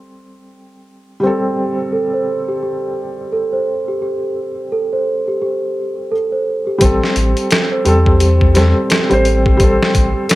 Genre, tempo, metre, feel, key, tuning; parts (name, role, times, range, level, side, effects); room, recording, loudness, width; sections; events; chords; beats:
trip hop; 86 BPM; 4/4; swing 60% on 16ths; A minor; A4 = 444 Hz
felt-muted upright piano; accompaniment; 0.0-10.4 s; G3 to C5; -17 LUFS; equal; tremolo, tape echo
celesta; arpeggios; 1.2-10.4 s; G4 to C5; -19 LUFS; right 2 dB; vintage 12-bit sampler grit, tape echo
warm sub bass; bass; 6.8-10.1 s; A1 to E2; -14 LUFS; equal
trip hop sampler-style drum kit; drums; 6.8-10.4 s; hi-hat, kick drum, snare drum; -15 LUFS; equal
light reverb; -13 LUFS; side -17 dB against mid
0.0-6.8 A section; 6.8-10.4 B section
0.0 Am7
0.53 | 1.23 1.93 2.62 3.32 | 4.02 4.72 5.42 6.11 | 6.81 7.51 8.21 8.90 | 9.60 10.30